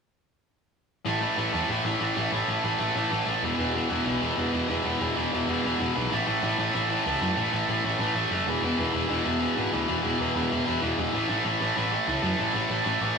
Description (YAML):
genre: punk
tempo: 191 BPM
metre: 4/4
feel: straight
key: unclear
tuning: A4 = 440 Hz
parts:
  - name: distorted electric guitar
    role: riff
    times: 1.1-13.2 s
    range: E2 to A3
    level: -24 LUFS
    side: equal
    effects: overdrive
  - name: growling picked electric bass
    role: bass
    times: 1.1-13.1 s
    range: E1 to F#2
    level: -32 LUFS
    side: equal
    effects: overdrive
room: moderate stone room reverb, RT60 1.1 s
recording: rough rehearsal-room recording, warm saturation, small room ambience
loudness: -24 LUFS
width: side -5 dB against mid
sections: 1.1-6.1 A section; 6.1-13.2 B section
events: none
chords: 1.1 A5; 3.4 E5; 6.1 A5; 8.5 E5; 11.1 A5